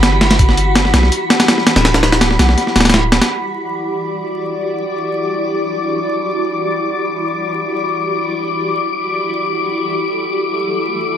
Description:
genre	drum and bass, jungle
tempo	free time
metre	none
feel	none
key	E minor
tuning	A4 = 440 Hz
part	granular cloud pad	sustained chords	0.0-11.2 s	E4 to F#5	-19 LUFS	equal	built-in reverb
part	long sustained 808-style bass	bass	0.0-3.2 s	D1 to B1	-15 LUFS	equal	none
part	breakbeat sampler-style drum kit	drums	0.0-3.3 s	hi-hat, kick drum, snare drum	-12 LUFS	equal	none
part	wind-like tuned noise texture	texture	0.0-11.2 s	B5 to D6	-21 LUFS	left 2 dB	built-in reverb
room	light reverb, digital ambience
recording	vinyl crackle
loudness	-13 LUFS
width	side -9 dB against mid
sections	0.0-3.3 A section; 3.3-11.2 B section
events	none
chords	0.0 Em9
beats	free time

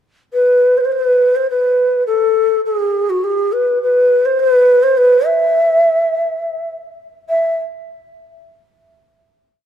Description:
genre	Arabic maqam ensemble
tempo	104 BPM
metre	3/4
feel	straight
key	unclear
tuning	A4 = 440 Hz
part	breathy reedy low ney	solo	0.3-7.6 s	F#4 to E5	-12 LUFS	equal	none
room	light reverb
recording	close, detailed microphones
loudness	-12 LUFS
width	side -9 dB against mid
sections	0.3-7.3 A section; 7.3-9.0 final note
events	none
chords	none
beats	| 0.33 0.91 1.49 | 2.06 2.65 3.23 | 3.81 4.38 4.96 | 5.54 6.12 6.71 | 7.29

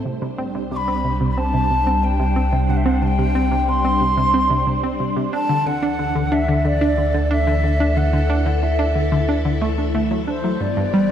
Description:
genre	ambient, sequencer-driven space music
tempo	91 BPM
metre	4/4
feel	straight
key	unclear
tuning	A4 = 440 Hz
part	round analog bass	bass	0.0-11.1 s	G1 to D2	-22 LUFS	equal	none
part	phased string machine	sustained chords	0.1-11.1 s	E3 to C5	-25 LUFS	left 2 dB	ensemble chorus, phaser
part	analog pluck	riff	0.1-11.1 s	G2 to D4	-22 LUFS	right 1 dB	chorus, analog delay
part	breathy mellow wooden flute	melody	0.7-11.1 s	C5 to D6	-22 LUFS	equal	analog delay
room	wet spring reverb, RT60 2.7 s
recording	echo-heavy mix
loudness	-17 LUFS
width	side -9 dB against mid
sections	0.0-11.1 A section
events	none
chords	0.1 Csus2; 5.3 Dsus2; 10.6 G6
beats	| 0.06 0.71 1.37 2.03 | 2.69 3.35 4.01 4.67 | 5.33 5.99 6.65 7.31 | 7.97 8.63 9.29 9.95 | 10.61

